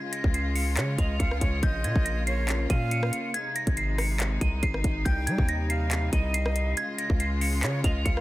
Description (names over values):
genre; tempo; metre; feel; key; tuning
hip hop, trap; 140 BPM; 4/4; half-time; unclear; A4 = 440 Hz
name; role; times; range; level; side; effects
dark detuned synth bell; melody; 0.0-8.2 s; G6 to F7; -32 LUFS; right 1 dB; chorus
clear studio string section; sustained chords; 0.0-8.2 s; C3 to F4; -34 LUFS; left 2 dB; none
trap drum kit; drums; 0.1-8.2 s; handclaps, hi-hat, kick drum, rim click; -27 LUFS; equal; none
hard-hitting 808-style bass; bass; 0.2-8.2 s; Ab1 to G3; -27 LUFS; equal; none
breathy bright jazz flute; second line; 0.8-8.2 s; Db5 to G5; -37 LUFS; right 4 dB; tape echo
room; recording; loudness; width
little or no reverb; dense, heavily limited modern master; -24 LUFS; side -17 dB against mid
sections
0.0-8.2 A section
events
none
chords
0.0 Db; 1.6 Bbm; 3.3 Ab; 5.1 Cm; 6.8 Db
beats
0.34 0.77 1.20 | 1.63 2.06 2.48 2.91 | 3.34 3.77 4.20 4.63 | 5.06 5.49 5.91 6.34 | 6.77 7.20 7.63 8.06